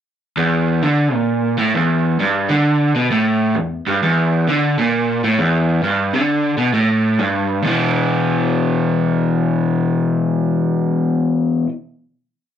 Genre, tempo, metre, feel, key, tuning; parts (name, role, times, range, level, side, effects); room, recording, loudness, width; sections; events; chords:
rock; 132 BPM; 4/4; swing 66% on 8ths; A4 = 441 Hz
crunchy overdriven guitar; solo; 0.4-11.7 s; E2 to E3; -15 LUFS; equal
moderate club reverb, RT60 0.6 s; -15 LUFS; side -9 dB against mid
0.4-7.6 riff; 7.6-11.3 final chord
0.4 E5